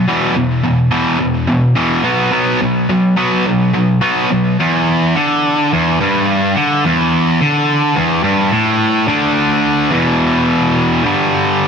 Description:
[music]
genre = rock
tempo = 107 BPM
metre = 4/4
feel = straight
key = unclear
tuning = A4 = 439 Hz
[part]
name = distorted electric guitar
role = solo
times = 0.0-11.7 s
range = E2 to D4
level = -12 LUFS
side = equal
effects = overdrive, digital delay
[sound]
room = light reverb, digital ambience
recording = dense, heavily limited modern master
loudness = -12 LUFS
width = side -6 dB against mid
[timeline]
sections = 0.0-4.6 A section; 4.6-9.1 B section; 9.1-11.7 C section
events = none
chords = 0.1 E5; 2.0 B5; 4.6 Em7; 9.1 D5; 9.9 E5; 11.0 G5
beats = | 0.07 0.64 1.20 1.77 | 2.33 2.90 3.46 4.02 | 4.59 5.15 5.71 6.28 | 6.84 7.40 7.96 8.52 | 9.08 9.64 10.21 10.77 | 11.33

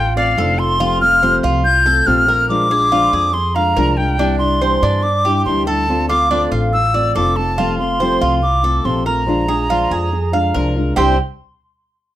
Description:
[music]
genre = latin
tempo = 142 BPM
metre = 4/4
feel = straight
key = C major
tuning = A4 = 439 Hz
[part]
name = silver concert flute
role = melody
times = 0.0-11.2 s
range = F5 to G6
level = -16 LUFS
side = equal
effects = plate reverb
[part]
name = Cuban tres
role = arpeggios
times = 0.0-11.2 s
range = C4 to F5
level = -21 LUFS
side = right 3 dB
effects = none
[part]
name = upright bass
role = bass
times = 0.0-11.2 s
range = F1 to G2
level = -20 LUFS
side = equal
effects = none
[part]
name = nylon-string guitar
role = accompaniment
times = 0.2-11.1 s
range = C3 to F4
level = -20 LUFS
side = left 3 dB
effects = none
[sound]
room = light reverb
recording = none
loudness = -13 LUFS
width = side -13 dB against mid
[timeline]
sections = 0.0-11.0 A section; 11.0-12.2 B section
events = none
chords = 0.0 Dm7; 0.8 F; 2.5 Bb7; 4.2 Cadd9; 5.9 Dm7; 7.6 F; 9.3 Bb7; 11.0 Cadd9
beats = 0.38 | 0.80 1.22 1.65 2.07 | 2.50 2.92 3.34 3.77 | 4.19 4.61 5.04 5.46 | 5.88 6.31 6.73 7.16 | 7.58 8.00 8.43 8.85 | 9.28 9.70 10.12 10.55 | 10.97

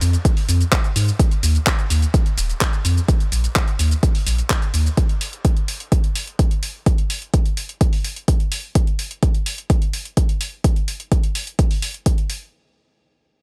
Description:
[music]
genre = progressive house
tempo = 127 BPM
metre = 4/4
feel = straight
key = unclear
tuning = A4 = 440 Hz
[part]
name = round analog bass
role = bass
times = 0.0-4.9 s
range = Eb1 to Ab2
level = -20 LUFS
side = equal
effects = sidechain pumping
[part]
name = deep house drum kit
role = drums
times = 0.0-12.4 s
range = handclaps, hi-hat, shaker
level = -27 LUFS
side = equal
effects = overdrive, sidechain pumping on hats, sidechain pumping on cymbals, sidechain pumping on perc
[part]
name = electronic kick drum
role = drums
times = 0.2-12.2 s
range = none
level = -20 LUFS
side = equal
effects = overdrive
[sound]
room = little or no reverb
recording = none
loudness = -20 LUFS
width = mono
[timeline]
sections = 0.0-12.5 A section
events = none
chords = none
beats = 0.25 0.72 | 1.19 1.67 2.14 2.61 | 3.08 3.56 4.03 4.50 | 4.97 5.45 5.92 6.39 | 6.86 7.34 7.81 8.28 | 8.75 9.23 9.70 10.17 | 10.64 11.12 11.59 12.06

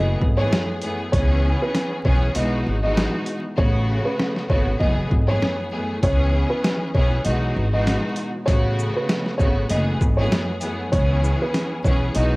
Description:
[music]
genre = hip hop, boom-bap hip-hop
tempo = 98 BPM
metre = 4/4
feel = swing 56% on 16ths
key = C# minor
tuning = A4 = 437 Hz
[part]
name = dark upright piano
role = melody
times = 0.0-12.4 s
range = B4 to D#5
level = -27 LUFS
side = right 1 dB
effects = high-pass filter, low-pass filter, analog delay
[part]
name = bright studio string section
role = accompaniment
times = 0.0-12.4 s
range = F#2 to G#4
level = -25 LUFS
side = equal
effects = high-pass filter, low-pass filter, cassette tape
[part]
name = upright bass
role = bass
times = 0.0-12.4 s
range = F#1 to C#2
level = -21 LUFS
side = equal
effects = none
[part]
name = trip hop sampler-style drum kit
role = drums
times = 0.2-12.3 s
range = hi-hat, kick drum, shaker, snare drum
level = -22 LUFS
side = equal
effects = none
[sound]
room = small room ambience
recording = home recording on cassette, vinyl crackle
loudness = -18 LUFS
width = side -24 dB against mid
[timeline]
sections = 0.0-12.4 A section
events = hi-hats muted 3.6-6.0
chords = 0.0 F#m11; 1.1 C#m7; 2.4 Emaj9; 3.6 A69; 4.8 F#m11; 6.0 C#m7; 7.3 Emaj9; 8.5 A69; 9.7 F#m11; 10.9 C#m7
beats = 0.52 | 1.13 1.74 2.35 2.97 | 3.58 4.19 4.80 5.42 | 6.03 6.64 7.25 7.87 | 8.48 9.09 9.70 10.31 | 10.93 11.54 12.15

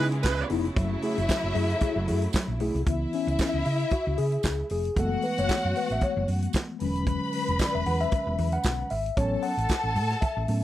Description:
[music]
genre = disco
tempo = 114 BPM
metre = 4/4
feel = swing 56% on 16ths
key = C# minor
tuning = A4 = 440 Hz
[part]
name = warm studio string section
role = second line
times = 0.0-10.6 s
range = E4 to B5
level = -31 LUFS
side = left 1 dB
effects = none
[part]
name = mellow tine electric piano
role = accompaniment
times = 0.0-10.6 s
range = D3 to F#5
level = -29 LUFS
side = left 3 dB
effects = medium stereo tremolo
[part]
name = clear studio string section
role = sustained chords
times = 0.0-2.9 s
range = C#3 to E4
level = -35 LUFS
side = right 2 dB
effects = none
[part]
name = hollow-body short-scale fingered electric bass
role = bass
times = 0.0-10.6 s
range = E1 to C#3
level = -28 LUFS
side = right 1 dB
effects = none
[part]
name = vintage drum kit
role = drums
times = 0.1-10.6 s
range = handclaps, hi-hat, kick drum, snare drum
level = -29 LUFS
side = equal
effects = none
[part]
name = tambourine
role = percussion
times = 0.2-9.8 s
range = none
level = -40 LUFS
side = right 16 dB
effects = none
[sound]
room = little or no reverb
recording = dry, close 1970s-style studio recording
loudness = -24 LUFS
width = side -13 dB against mid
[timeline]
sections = 0.0-2.9 A section; 2.9-10.6 B section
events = tine electric piano solo 2.9-10.6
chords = 0.0 C#m7; 0.8 F#m7; 2.9 C#m7; 5.0 F#m11; 6.8 E13; 9.2 A6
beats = 0.24 | 0.76 1.29 1.81 2.34 | 2.86 3.39 3.92 4.44 | 4.97 5.49 6.02 6.54 | 7.07 7.60 8.12 8.65 | 9.17 9.70 10.22

